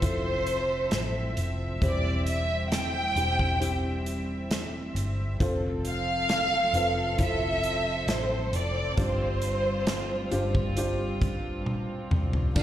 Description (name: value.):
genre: pop ballad.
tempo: 67 BPM.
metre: 4/4.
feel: straight.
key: unclear.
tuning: A4 = 441 Hz.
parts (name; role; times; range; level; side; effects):
warm symphonic violin section; melody; 0.0-12.6 s; C5 to G5; -28 LUFS; right 1 dB; slapback echo, ping-pong delay.
felt-muted upright piano; accompaniment; 0.0-12.6 s; G2 to D5; -34 LUFS; left 2 dB; slapback echo.
warm studio string section; sustained chords; 0.0-12.6 s; D3 to E5; -36 LUFS; right 2 dB; none.
vintage muted fingered electric bass; bass; 0.0-12.6 s; E1 to D2; -31 LUFS; equal; none.
natural country drum kit; drums; 0.0-12.6 s; crash cymbal, hi-hat, kick drum, snare drum, toms; -29 LUFS; equal; none.
tambourine; percussion; 12.6 s; none; -39 LUFS; right 3 dB; none.
room: light reverb.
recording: live gig heard through the venue's PA, recital hall reverb.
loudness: -25 LUFS.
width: side -12 dB against mid.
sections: 0.0-12.6 A section.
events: drum fill 11.7-12.6.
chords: 0.0 Fmaj7; 1.8 C/E; 5.4 Fmaj7; 9.0 G7sus4.